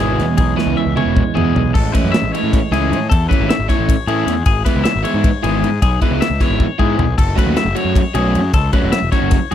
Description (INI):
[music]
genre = math rock and midwest emo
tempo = 309 BPM (eighths)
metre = 7/8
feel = straight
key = unclear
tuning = A4 = 440 Hz
[part]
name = clean electric guitar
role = accompaniment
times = 0.0-3.1 s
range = E2 to C#4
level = -20 LUFS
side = right 10 dB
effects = none
[part]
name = twangy electric guitar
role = arpeggios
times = 0.0-9.5 s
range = G#4 to E5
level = -22 LUFS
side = left 10 dB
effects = none
[part]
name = crunchy overdriven guitar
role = riff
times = 0.0-9.5 s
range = E3 to F#4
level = -19 LUFS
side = right 1 dB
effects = none
[part]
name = fuzz picked electric bass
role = bass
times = 0.0-9.5 s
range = E1 to A2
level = -19 LUFS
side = equal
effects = overdrive
[part]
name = modern studio drum kit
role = drums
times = 0.0-9.5 s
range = crash cymbal, kick drum, ride cymbal, snare drum, toms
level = -17 LUFS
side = equal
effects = none
[sound]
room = little or no reverb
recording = dry, close 1970s-style studio recording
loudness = -13 LUFS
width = side -10 dB against mid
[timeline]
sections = 0.0-1.8 A section; 1.8-9.5 B section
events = drum fill 0.6-1.8, 6.6-7.2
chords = 0.0 E6; 1.8 Amaj7; 4.5 E6/G#; 7.2 F#m7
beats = 0.00 0.20 | 0.39 0.58 0.78 0.97 1.17 1.36 1.56 | 1.75 1.95 2.14 2.33 2.53 2.72 2.92 | 3.11 3.30 3.50 3.69 3.89 4.08 4.27 | 4.47 4.66 4.86 5.05 5.24 5.44 5.63 | 5.82 6.02 6.21 6.41 6.60 6.79 6.99 | 7.18 7.38 7.57 7.76 7.96 8.15 8.35 | 8.54 8.73 8.93 9.12 9.32 9.51